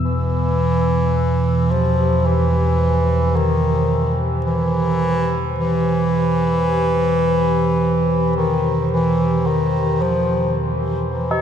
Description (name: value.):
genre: dark ambient drone.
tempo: 54 BPM.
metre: 4/4.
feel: straight.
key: unclear.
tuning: A4 = 441 Hz.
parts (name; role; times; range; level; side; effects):
clear bass clarinet; melody; 0.0-11.4 s; D#3 to F3; -18 LUFS; right 1 dB; diffuse ambient delay.
dark analog pad; sustained chords; 0.0-11.4 s; E3 to E6; -27 LUFS; left 3 dB; chorus.
deep rumbling drone; drone; 0.0-11.4 s; E2 to B2; -21 LUFS; equal; built-in reverb.
tubular bells; arpeggios; 11.3-11.4 s; D#4; -18 LUFS; left 1 dB; none.
room: wet cathedral reverb, RT60 6.0 s.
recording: dark, warm production.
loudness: -16 LUFS.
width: side -8 dB against mid.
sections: 0.0-11.4 A section.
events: fade-out on analog synth pad 0.0-11.4.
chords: 0.0 C.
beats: | 0.02 1.13 2.24 3.35 | 4.46 5.58 6.69 7.80 | 8.91 10.02 11.13.